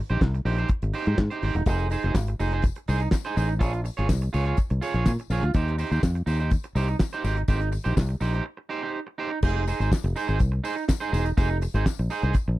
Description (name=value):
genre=disco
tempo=124 BPM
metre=4/4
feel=straight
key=F minor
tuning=A4 = 440 Hz
part: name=electric guitar at the edge of break-up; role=accompaniment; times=0.1-12.5 s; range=Eb4 to Db5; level=-29 LUFS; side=right 4 dB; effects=none
part: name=fingered electric bass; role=bass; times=0.1-12.6 s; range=E1 to Bb2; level=-24 LUFS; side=equal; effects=none
part: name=damped 70s drum kit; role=drums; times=0.1-12.5 s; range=crash cymbal, handclaps, hi-hat, kick drum, snare drum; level=-23 LUFS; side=equal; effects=none
part: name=tambourine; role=percussion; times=1.7-12.5 s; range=none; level=-46 LUFS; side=left 26 dB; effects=none
room=little or no reverb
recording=dry, close 1970s-style studio recording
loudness=-23 LUFS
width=side -17 dB against mid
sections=0.0-9.4 A section; 9.4-12.6 B section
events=break 8.5-9.4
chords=0.0 Abmaj7; 1.7 Fm7; 3.6 Bbm7; 5.5 Eb6; 7.2 Abmaj7; 9.4 Fm7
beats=0.21 0.69 1.18 | 1.67 2.15 2.63 3.12 | 3.60 4.09 4.58 5.06 | 5.55 6.03 6.52 7.00 | 7.49 7.97 8.46 8.94 | 9.43 9.91 10.40 10.89 | 11.37 11.86 12.34